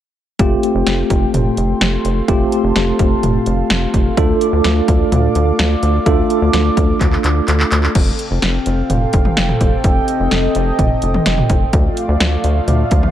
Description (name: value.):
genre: synth-pop.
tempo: 127 BPM.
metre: 4/4.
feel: straight.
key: unclear.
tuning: A4 = 442 Hz.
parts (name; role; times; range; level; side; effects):
tine electric piano; accompaniment; 0.4-7.9 s; A3 to A4; -17 LUFS; right 1 dB; medium stereo tremolo, tape echo, shimmer reverb.
chorused pulse-width pad; sustained chords; 0.4-13.1 s; A3 to D6; -21 LUFS; equal; shimmer reverb.
rubbery square bass; bass; 0.4-13.1 s; F1 to D2; -17 LUFS; equal; none.
punchy analog drum machine; drums; 0.4-13.1 s; crash cymbal, handclaps, hi-hat, kick drum, snare drum, toms; -17 LUFS; equal; none.
room: light reverb.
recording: echo-heavy mix.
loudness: -12 LUFS.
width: side -11 dB against mid.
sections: 0.4-8.0 A section; 8.0-13.1 B section.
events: drum fill 7.0-8.0.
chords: 0.4 Fadd9; 4.2 Dm; 8.0 Fadd9; 11.7 Dm.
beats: | 0.39 0.87 1.34 1.81 | 2.28 2.76 3.23 3.70 | 4.17 4.65 5.12 5.59 | 6.06 6.54 7.01 7.48 | 7.95 8.43 8.90 9.37 | 9.84 10.31 10.79 11.26 | 11.73 12.21 12.68.